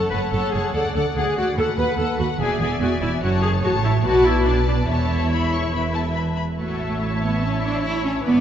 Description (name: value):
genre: quick classical-period movement for string orchestra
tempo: 144 BPM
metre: 4/4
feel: straight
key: A major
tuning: A4 = 439 Hz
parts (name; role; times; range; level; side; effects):
- warm symphonic violin section; melody; 0.0-8.4 s; E5 to C#6; -30 LUFS; left 6 dB; none
- warm symphonic violin section; second line; 0.0-8.4 s; E4 to F#5; -29 LUFS; left 3 dB; none
- rich symphonic viola section; accompaniment; 0.0-8.4 s; D4 to E5; -23 LUFS; left 1 dB; none
- rich symphonic cello section; bass; 0.1-8.4 s; D2 to E4; -24 LUFS; right 2 dB; none
- rich symphonic double bass section; bass; 0.1-8.4 s; E1 to D#2; -25 LUFS; right 2 dB; none
room: wet concert hall reverb, RT60 1.9 s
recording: dark, warm production, nothing above 7.8 kHz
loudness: -19 LUFS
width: side -9 dB against mid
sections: 0.0-6.6 A section; 6.6-8.4 B section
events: none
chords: 0.0 F#m; 0.7 D; 1.6 B/D#; 2.4 E7; 3.2 F#m; 4.0 Bm7; 4.9 A/E; 6.6 A